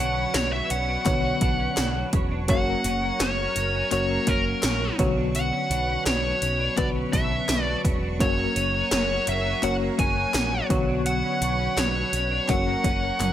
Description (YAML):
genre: 1980s-style pop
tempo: 84 BPM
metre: 4/4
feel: straight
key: unclear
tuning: A4 = 440 Hz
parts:
  - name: dark smooth lead guitar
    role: melody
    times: 0.0-13.3 s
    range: A#4 to G#5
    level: -26 LUFS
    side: equal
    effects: overdrive
  - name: FM electric piano with auto-pan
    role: accompaniment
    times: 0.0-13.3 s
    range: D3 to C#5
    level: -29 LUFS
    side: left 3 dB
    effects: none
  - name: lush unison pad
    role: sustained chords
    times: 0.0-13.3 s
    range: A#4 to C#6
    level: -35 LUFS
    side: equal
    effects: chorus, phaser
  - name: twelve-string electric guitar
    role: riff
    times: 0.0-13.3 s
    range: F#3 to D4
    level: -33 LUFS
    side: right 5 dB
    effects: ensemble chorus
  - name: overdriven picked electric bass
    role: bass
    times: 0.0-13.3 s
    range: E1 to B1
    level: -29 LUFS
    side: equal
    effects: none
  - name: 80s electronic pad drums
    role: drums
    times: 0.3-13.3 s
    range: hi-hat, kick drum, snare drum, tambourine, toms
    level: -26 LUFS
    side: equal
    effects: gated reverb on snare and toms, overdrive, gated reverb
  - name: group handclap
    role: percussion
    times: 0.3-13.3 s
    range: none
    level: -38 LUFS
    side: left 5 dB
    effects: none
room: light reverb, digital ambience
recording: bright 1980s-style digital production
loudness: -21 LUFS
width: side -11 dB against mid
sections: 0.0-13.3 A section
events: none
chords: 0.0 Bmadd9; 2.5 F#; 5.0 Bmadd9; 8.2 F#; 10.7 Bmadd9; 12.5 F#